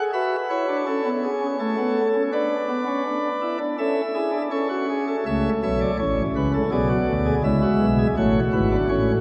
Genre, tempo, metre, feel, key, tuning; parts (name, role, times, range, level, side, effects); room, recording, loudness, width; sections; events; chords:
classical, baroque-style 4-part fugue for pipe organ; 82 BPM; 4/4; straight; A major; A4 = 444 Hz
pipe organ, sparkling flutes; solo; 0.0-9.2 s; G#1 to E5; -22 LUFS; equal
wet cathedral reverb, RT60 5.6 s; heard from further back in the room; -22 LUFS; mono
0.0-5.3 A section; 5.3-9.2 B section
0.0 A; 2.3 E5; 3.8 A/C#; 5.3 A; 6.7 G#dim/B; 8.2 F#m